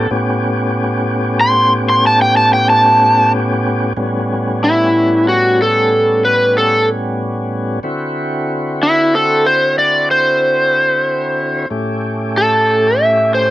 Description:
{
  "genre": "blues",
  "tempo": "62 BPM (dotted quarters)",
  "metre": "12/8",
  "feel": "straight",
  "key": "A mixolydian",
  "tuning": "A4 = 439 Hz",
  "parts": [
    { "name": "overdriven slide guitar", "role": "melody", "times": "0.0-13.5 s", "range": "E4 to C6", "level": "-11 LUFS", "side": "equal", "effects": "none" },
    { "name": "overdriven tonewheel organ", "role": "sustained chords", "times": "0.0-13.5 s", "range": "A2 to G4", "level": "-17 LUFS", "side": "equal", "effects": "slow rotary speaker" }
  ],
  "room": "moderate studio reverb, RT60 0.6 s",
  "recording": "dark, warm production",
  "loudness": "-11 LUFS",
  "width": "side -15 dB against mid",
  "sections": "0.0-4.0 A section; 4.0-13.5 B section",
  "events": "electric slide guitar solo 0.0-4.0",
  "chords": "0.0 A7; 7.8 D7; 11.7 A7"
}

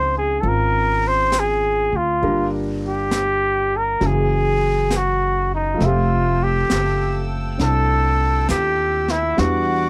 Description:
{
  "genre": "jazz ballad",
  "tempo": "67 BPM",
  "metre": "4/4",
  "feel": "swing 66% on 8ths",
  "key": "unclear",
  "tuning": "A4 = 440 Hz",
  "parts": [
    { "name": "clear flugelhorn", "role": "melody", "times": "0.0-9.9 s", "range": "Eb4 to C5", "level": "-22 LUFS", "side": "equal", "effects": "none" },
    { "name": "clear concert grand piano", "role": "accompaniment", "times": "0.0-9.9 s", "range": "E3 to F#5", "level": "-28 LUFS", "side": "equal", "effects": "none" },
    { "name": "upright bass", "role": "bass", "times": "0.0-9.9 s", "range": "F1 to E2", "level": "-25 LUFS", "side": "equal", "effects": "none" },
    { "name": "jazz brush drum kit", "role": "drums", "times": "0.4-9.9 s", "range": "brushed snare drum, hi-hat, snare drum", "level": "-31 LUFS", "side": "equal", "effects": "none" },
    { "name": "warm chamber string section", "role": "sustained chords", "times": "5.8-9.9 s", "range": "A4 to E6", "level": "-37 LUFS", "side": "equal", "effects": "none" }
  ],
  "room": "light reverb",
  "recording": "none",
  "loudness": "-19 LUFS",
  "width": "mono",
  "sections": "0.0-9.9 A section",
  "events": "none",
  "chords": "0.0 Dbmaj7; 2.2 Gm7; 4.0 F#9; 5.8 Fmaj9; 9.4 Em9"
}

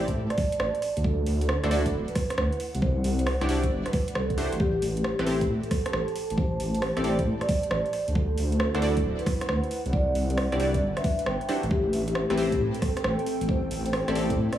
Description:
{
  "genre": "UK garage, two-step garage",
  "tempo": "135 BPM",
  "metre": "4/4",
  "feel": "swing 66% on 16ths",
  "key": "A dorian",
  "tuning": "A4 = 440 Hz",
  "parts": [
    { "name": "vibraphone with soft mallets", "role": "melody", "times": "0.0-14.6 s", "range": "G4 to G5", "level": "-31 LUFS", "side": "right 1 dB", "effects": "digital delay" },
    { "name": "punchy chord stab", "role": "stabs", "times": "0.0-14.3 s", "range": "C4 to D5", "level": "-31 LUFS", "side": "equal", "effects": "chorus, cassette tape, digital delay" },
    { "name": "dark detuned saw bass", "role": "bass", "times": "0.0-14.5 s", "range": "D1 to A2", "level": "-27 LUFS", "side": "equal", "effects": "none" },
    { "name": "airy breathy pad", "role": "texture", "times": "0.0-14.6 s", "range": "C4 to A5", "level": "-38 LUFS", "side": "left 1 dB", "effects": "chorus, sidechain pumping" },
    { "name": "electronic kick drum", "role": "drums", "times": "0.1-14.4 s", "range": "none", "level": "-27 LUFS", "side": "equal", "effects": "overdrive, studio reverb" },
    { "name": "garage drum kit", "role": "drums", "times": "0.1-14.6 s", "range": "hi-hat, rim click", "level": "-32 LUFS", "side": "right 2 dB", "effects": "overdrive, studio reverb" }
  ],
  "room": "light reverb, digital ambience",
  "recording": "small room reverb",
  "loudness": "-24 LUFS",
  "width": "side -11 dB against mid",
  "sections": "0.0-14.6 A section",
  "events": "fade-in on analog synth pad 0.0-14.6",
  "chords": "0.0 Am7; 1.0 D9; 2.8 Cmaj9#11; 4.6 Am7; 8.2 D9; 9.9 Cmaj9#11; 11.7 Am7"
}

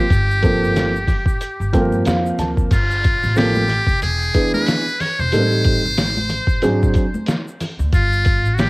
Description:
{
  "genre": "hip hop, jazz-hop",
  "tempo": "92 BPM",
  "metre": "4/4",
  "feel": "swing 59% on 16ths",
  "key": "G dorian",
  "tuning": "A4 = 440 Hz",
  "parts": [
    { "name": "trumpet with metal mute", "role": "melody", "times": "0.0-8.7 s", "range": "F4 to C#5", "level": "-21 LUFS", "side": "equal", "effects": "analog delay" },
    { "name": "warm upright piano", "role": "accompaniment", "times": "0.0-7.0 s", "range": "E3 to A5", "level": "-19 LUFS", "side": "right 1 dB", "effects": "none" },
    { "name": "upright bass", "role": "bass", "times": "0.0-8.7 s", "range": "E1 to G2", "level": "-21 LUFS", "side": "equal", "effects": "none" },
    { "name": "lo-fi sampler-style drum kit", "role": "drums", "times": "0.1-8.7 s", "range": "crash cymbal, hi-hat, kick drum, snare drum", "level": "-19 LUFS", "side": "equal", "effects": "cassette tape" },
    { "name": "egg shaker and congas", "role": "percussion", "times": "0.1-8.7 s", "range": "none", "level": "-29 LUFS", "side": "left 1 dB", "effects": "none" }
  ],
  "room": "light reverb, studio reverb",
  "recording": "home recording on cassette, vinyl crackle",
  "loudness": "-15 LUFS",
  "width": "side -24 dB against mid",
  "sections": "0.0-2.7 A section; 2.7-8.7 B section",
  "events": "upright piano fill 1.4-2.7",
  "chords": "0.0 Gm11; 4.0 E7; 5.3 Am7b5; 6.6 Ab7#11; 7.9 G7sus2"
}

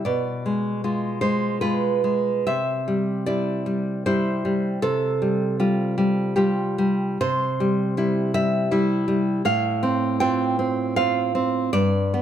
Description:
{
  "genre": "romantic piece for solo classical guitar",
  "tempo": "66-82 BPM",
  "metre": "3/4",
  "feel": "rubato",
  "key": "unclear",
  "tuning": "A4 = 440 Hz",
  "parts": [
    { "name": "nylon-string guitar", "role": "solo", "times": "0.0-12.2 s", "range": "G2 to G5", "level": "-20 LUFS", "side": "equal", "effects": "none" }
  ],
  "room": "moderate recital hall reverb, RT60 1.5 s",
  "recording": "none",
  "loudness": "-20 LUFS",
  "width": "side -10 dB against mid",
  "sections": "0.0-12.2 A section",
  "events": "none",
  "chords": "0.1 Bdim7; 2.5 C; 4.8 Fadd9/C; 7.2 C; 9.5 F/A"
}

